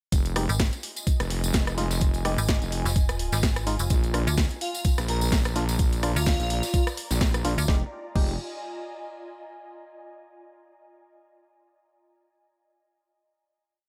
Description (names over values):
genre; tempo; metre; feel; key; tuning
bass house; 127 BPM; 4/4; swing 56% on 16ths; F dorian; A4 = 440 Hz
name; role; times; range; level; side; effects
wobble bass; bass; 0.1-8.4 s; F1 to Bb1; -30 LUFS; equal; chorus, overdrive, sidechain pumping
breakbeat sampler-style drum kit; drums; 0.1-7.6 s; hi-hat, snare drum; -42 LUFS; equal; high-pass filter on hats, high-pass filter on snare, high-pass filter on room
electronic kick drum; drums; 0.1-8.3 s; none; -26 LUFS; equal; none
house drum kit; drums; 0.1-8.3 s; crash cymbal, hi-hat, rim click, snare drum; -34 LUFS; equal; none
tambourine; percussion; 0.1-7.7 s; none; -38 LUFS; equal; none
ethereal airy pad; texture; 0.8-9.5 s; F4 to Bb5; -41 LUFS; equal; ensemble chorus, built-in reverb, sidechain pumping
percussive organ stab; stabs; 0.4-8.3 s; Ab3 to G4; -35 LUFS; equal; subtle chorus, vintage 12-bit sampler grit, sidechain pumping, digital delay
metallic FM bass; bass; 0.5-7.7 s; F1 to D2; -29 LUFS; equal; sidechain pumping
airy dreamy lead; melody; 4.6-6.8 s; F4 to Bb4; -34 LUFS; equal; chorus, digital delay
room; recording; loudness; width
digital ambience; none; -25 LUFS; mono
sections
0.1-7.7 drop; 7.7-9.6 final chord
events
drop 0.1-7.7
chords
0.1 Fm7; 3.9 Bb; 7.7 Fm7